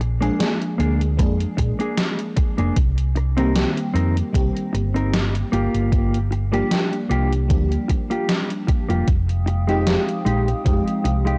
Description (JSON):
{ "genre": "vaporwave", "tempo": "76 BPM", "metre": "4/4", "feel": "swing 54% on 16ths", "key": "F dorian", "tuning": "A4 = 440 Hz", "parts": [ { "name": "mellow electric guitar", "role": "riff", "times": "0.0-11.4 s", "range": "Ab3 to Bb4", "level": "-28 LUFS", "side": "equal", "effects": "lush chorus, vintage 12-bit sampler grit, tape echo" }, { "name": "hollow-body short-scale fingered electric bass", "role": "bass", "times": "0.0-11.4 s", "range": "F1 to F2", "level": "-23 LUFS", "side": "equal", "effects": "tube saturation" }, { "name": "gated 80s digital drum machine", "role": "drums", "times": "0.0-11.4 s", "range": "hi-hat, snare drum", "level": "-28 LUFS", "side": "equal", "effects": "gated reverb, gated reverb snare, overdrive, vintage 12-bit sampler grit" }, { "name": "FM electric piano with soft pad layer", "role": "accompaniment", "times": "0.2-11.4 s", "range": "Eb3 to Ab4", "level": "-27 LUFS", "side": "equal", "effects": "phaser, analog chorus, cassette tape, tape echo" }, { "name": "electronic kick drum", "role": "drums", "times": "1.2-10.8 s", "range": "none", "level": "-22 LUFS", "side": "equal", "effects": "overdrive, vintage 12-bit sampler grit" }, { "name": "warbly tape-like pad", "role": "sustained chords", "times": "9.3-11.4 s", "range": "Ab3 to Eb6", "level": "-33 LUFS", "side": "equal", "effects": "chorus, built-in reverb" } ], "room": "light reverb", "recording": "dry, gritty hardware recording, transformer saturation, cassette tape", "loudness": "-21 LUFS", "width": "mono", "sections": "0.0-11.4 A section", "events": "none", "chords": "0.0 Bb7; 2.8 Cm7; 5.5 Gm7; 9.1 Fm9" }